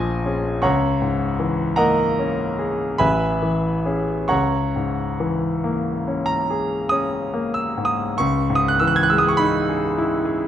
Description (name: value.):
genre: classical, impressionist solo piano.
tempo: 44-53 BPM.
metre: 3/4.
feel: rubato.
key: C# dorian.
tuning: A4 = 437 Hz.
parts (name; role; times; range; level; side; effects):
clear concert grand piano; solo; 0.0-10.5 s; A1 to G#6; -18 LUFS; equal; none.
room: moderate recital hall reverb, RT60 1.4 s.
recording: none.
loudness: -18 LUFS.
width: side -10 dB against mid.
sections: 0.0-8.2 A section; 8.2-10.5 A section.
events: none.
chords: 0.0 A#m9; 0.6 C#m6; 3.0 Amaj7; 4.3 C#m6; 8.2 C#madd9.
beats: | 0.64 1.79 3.00 | 4.31 5.64 6.91 | 8.18 9.39.